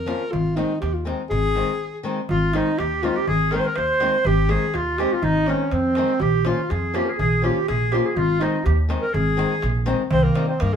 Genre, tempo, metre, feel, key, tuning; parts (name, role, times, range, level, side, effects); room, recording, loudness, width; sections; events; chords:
balkan folk, Balkan wedding band; 123 BPM; 2/4; straight; Ab major; A4 = 440 Hz
mellow alto saxophone; melody; 0.0-10.8 s; C4 to C5; -24 LUFS; equal
upright bass; bass; 0.0-10.8 s; Ab1 to G2; -24 LUFS; right 1 dB
flamenco guitar; accompaniment; 0.1-10.5 s; Eb3 to F4; -27 LUFS; left 4 dB
darbuka; percussion; 0.1-10.7 s; -26 LUFS; equal
clear clarinet; second line; 2.3-10.8 s; Bb3 to C5; -25 LUFS; right 2 dB
wet studio reverb, RT60 0.7 s; band playing live in one room; -19 LUFS; side -8 dB against mid
0.0-2.3 A section; 2.3-10.1 A section
break 1.8-2.3
0.3 Ab; 6.2 Bbm; 8.2 Ab; 10.1 Cm